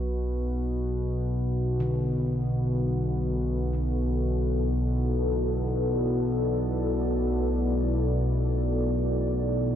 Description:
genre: dark ambient drone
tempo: free time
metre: none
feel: none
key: B minor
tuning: A4 = 440 Hz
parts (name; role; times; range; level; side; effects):
- analog drone; drone; 0.0-9.8 s; B1 to B2; -26 LUFS; equal; chorus
- deep dark ambient pad; sustained chords; 3.8-9.8 s; B3 to D5; -30 LUFS; left 2 dB; chorus, built-in reverb
- gamelan-type bossed gongs; arpeggios; 1.8-9.6 s; D3; -38 LUFS; equal; tape echo
room: wet cathedral reverb, RT60 5.6 s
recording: dark, warm production, nothing above 7.8 kHz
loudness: -24 LUFS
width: side -9 dB against mid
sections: 0.0-9.8 A section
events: none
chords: 0.0 Bm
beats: free time

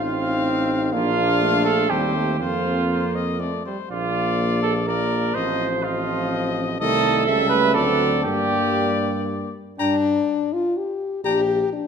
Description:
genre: classical, brass quintet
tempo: 124 BPM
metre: 3/4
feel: rubato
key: G minor from 6.8 s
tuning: A4 = 439 Hz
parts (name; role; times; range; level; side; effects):
- clear trumpet; melody; 0.0-11.4 s; C5 to Bb5; -27 LUFS; left 9 dB; none
- clear flugelhorn; second line; 0.0-11.4 s; F4 to G5; -23 LUFS; right 6 dB; none
- clear trombone; accompaniment; 0.0-11.4 s; Eb3 to D4; -29 LUFS; right 2 dB; none
- mellow French horn; accompaniment; 0.0-11.9 s; A3 to G4; -25 LUFS; left 5 dB; none
- warm tuba; bass; 0.0-11.6 s; A1 to G2; -26 LUFS; right 3 dB; none
room: wet recital hall reverb, RT60 1.6 s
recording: none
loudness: -19 LUFS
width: side -6 dB against mid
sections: 0.0-9.8 A section; 9.8-11.9 B section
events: none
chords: 0.0 F7/A; 0.9 Bb; 1.9 Cm/Eb; 2.4 Fsus4; 3.4 F; 3.9 Bb; 5.4 F7/A; 6.8 Adim/C; 7.3 A7/C#; 7.8 D7; 8.3 Gm; 9.8 G5; 11.2 Gm/Bb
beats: 0.46 | 0.94 1.42 1.91 | 2.41 2.91 3.41 | 3.91 4.40 4.88 | 5.36 5.84 6.32 | 6.79 7.27 7.76 | 8.27 8.78 9.29 | 9.79 10.29 10.77 | 11.24 11.72

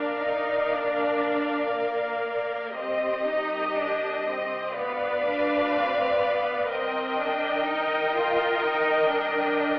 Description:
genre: classical, slow romantic movement for string orchestra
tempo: 57-64 BPM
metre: 4/4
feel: rubato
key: unclear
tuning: A4 = 441 Hz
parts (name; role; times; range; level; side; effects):
- warm chamber violin section; melody; 0.0-9.8 s; Eb5 to G5; -31 LUFS; left 1 dB; none
- rich symphonic violin section; second line; 0.0-9.8 s; D5 to Eb5; -28 LUFS; left 1 dB; none
- rich chamber viola section; accompaniment; 0.0-9.8 s; G4 to B4; -29 LUFS; equal; none
- rich chamber double bass section; bass; 0.0-9.8 s; Bb1 to D2; -44 LUFS; equal; none
- warm symphonic cello section; bass; 0.0-9.8 s; Bb3 to F4; -29 LUFS; equal; none
room: wet recital hall reverb, RT60 1.3 s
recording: recorded in a church or concert hall, telephone sound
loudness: -23 LUFS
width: side -23 dB against mid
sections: 0.0-9.8 A section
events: none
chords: 0.0 Bb; 2.7 Cm; 4.8 Bdim/D; 6.7 Cm7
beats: 0.72 1.73 | 2.75 3.75 4.76 5.75 | 6.71 7.67 8.63 9.57

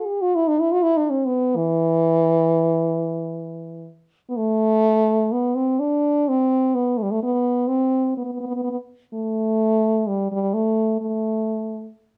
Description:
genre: arabic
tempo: 126 BPM (eighths)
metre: 10/8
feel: straight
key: E maqam huzam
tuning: A4 = 441 Hz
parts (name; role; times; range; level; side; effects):
- mellow French horn; solo; 0.0-11.9 s; E3 to A4-40c; -21 LUFS; equal; none
room: moderate studio reverb, RT60 0.6 s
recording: dark, warm production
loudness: -21 LUFS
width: mono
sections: 0.0-4.8 A section; 4.8-12.2 B section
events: none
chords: none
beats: | 0.10 0.58 1.05 1.52 2.00 2.47 2.95 3.42 3.90 4.37 | 4.84 5.32 5.79 6.27 6.74 7.22 7.69 8.16 8.64 9.11 | 9.59 10.06 10.54 11.01 11.48

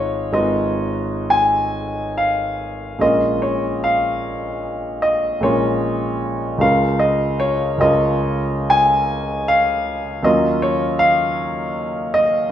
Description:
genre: classical, impressionist solo piano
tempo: 40-54 BPM (dotted quarters)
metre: 9/8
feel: rubato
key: G# dorian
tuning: A4 = 437 Hz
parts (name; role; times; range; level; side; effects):
- clear concert grand piano; solo; 0.0-12.5 s; G#1 to G#5; -16 LUFS; equal; none
room: wet recital hall reverb, RT60 1.4 s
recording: minimal, uncompressed stereo recording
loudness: -16 LUFS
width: side -10 dB against mid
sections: 0.0-12.5 A section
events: none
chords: 0.0 G#m6; 3.0 A#m7; 6.6 C#69; 10.3 D#m9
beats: 0.34 1.76 | 3.02 4.25 5.45 | 6.63 7.83 9.11 | 10.26 11.41

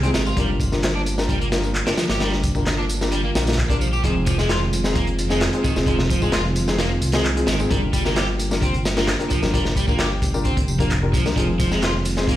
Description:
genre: breakbeat, breaks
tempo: 131 BPM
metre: 4/4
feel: straight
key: F dorian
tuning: A4 = 441 Hz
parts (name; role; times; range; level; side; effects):
- mellow tonewheel organ; sustained chords; 0.0-12.4 s; D3 to G4; -28 LUFS; right 1 dB; slow rotary speaker, sidechain pumping
- crunchy overdriven guitar; riff; 0.0-12.4 s; Eb3 to G4; -27 LUFS; equal; vintage 12-bit sampler grit, ping-pong delay
- dark grand piano; stabs; 0.0-12.3 s; C4 to Bb4; -26 LUFS; left 2 dB; vintage 12-bit sampler grit, ping-pong delay
- dark detuned saw bass; bass; 0.0-12.4 s; F1 to C2; -24 LUFS; equal; none
- crunchy breakbeat drum kit; drums; 0.0-12.4 s; hi-hat, kick drum, snare drum; -23 LUFS; equal; none
- punchy analog drum machine; drums; 0.1-12.4 s; handclaps, ride cymbal, tambourine; -30 LUFS; equal; none
room: light reverb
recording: played on a big sound system in a bare room, stone room reverb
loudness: -18 LUFS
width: side -13 dB against mid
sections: 0.0-4.0 A section; 4.0-12.4 B section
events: drop 4.0-12.4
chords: 0.4 Gm7; 4.0 Fm7; 7.7 Gm7; 11.4 Fm7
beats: | 0.38 0.83 1.29 1.75 | 2.21 2.67 3.12 3.58 | 4.04 4.50 4.96 5.42 | 5.87 6.33 6.79 7.25 | 7.71 8.16 8.62 9.08 | 9.54 9.99 10.45 10.91 | 11.37 11.83 12.29

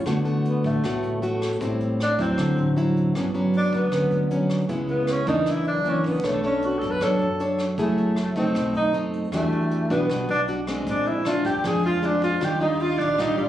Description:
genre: bossa nova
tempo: 156 BPM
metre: 4/4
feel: straight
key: D major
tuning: A4 = 440 Hz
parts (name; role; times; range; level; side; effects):
- nylon-string guitar; accompaniment; 0.0-13.5 s; F#2 to C#5; -23 LUFS; equal; none
- dark symphonic string section; sustained chords; 0.0, 12.4-13.5 s; F4 to F5; -37 LUFS; right 2 dB; none
- upright bass; bass; 0.1-13.5 s; F#1 to F#2; -34 LUFS; right 1 dB; none
- jazz brush drum kit; drums; 0.1-13.5 s; hi-hat, kick drum, rim click; -38 LUFS; equal; none
- breathy tenor saxophone; melody; 0.5-13.5 s; G3 to B4; -25 LUFS; right 1 dB; plate reverb
room: moderate studio reverb, RT60 0.6 s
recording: recorded on a phone in the room, club reverb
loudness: -21 LUFS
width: side -12 dB against mid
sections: 0.1-13.5 A section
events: tenor saxophone solo 0.1-13.5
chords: 0.1 D6; 1.6 Am7; 2.4 D9; 3.1 Gmaj7#11; 4.7 C#m7; 5.5 F#7b13; 6.2 Bm9; 7.8 F#m9; 8.5 B7b9; 9.3 Em9; 10.9 Bb9; 12.4 Ebmaj9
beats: | 0.06 0.44 0.83 1.22 | 1.60 1.99 2.37 2.76 | 3.15 3.53 3.92 4.30 | 4.69 5.08 5.46 5.85 | 6.23 6.62 7.00 7.39 | 7.78 8.16 8.55 8.93 | 9.32 9.71 10.09 10.48 | 10.86 11.25 11.64 12.02 | 12.41 12.79 13.18

